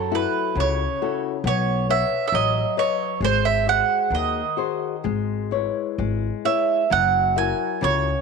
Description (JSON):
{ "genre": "fado-style ballad", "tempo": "66 BPM", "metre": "2/4", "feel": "rubato", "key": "C# minor", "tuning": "A4 = 440 Hz", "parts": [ { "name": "mandolin", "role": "melody", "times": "0.0-8.2 s", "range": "A4 to G#5", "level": "-22 LUFS", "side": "right 9 dB", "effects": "none" }, { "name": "nylon-string guitar", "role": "accompaniment", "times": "0.0-8.2 s", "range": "C#3 to F#5", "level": "-25 LUFS", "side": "left 14 dB", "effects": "none" }, { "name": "upright bass", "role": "bass", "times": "0.0-8.1 s", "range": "F#1 to F#2", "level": "-26 LUFS", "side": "left 1 dB", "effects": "none" } ], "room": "moderate plate reverb, RT60 2.8 s", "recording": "1960s-style stereo with parts hard left and right", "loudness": "-20 LUFS", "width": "side -5 dB against mid", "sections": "0.0-8.2 A section", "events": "none", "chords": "0.0 F#m7; 1.4 Badd9; 3.2 G#7; 5.1 C#m7/G#; 6.9 F#7" }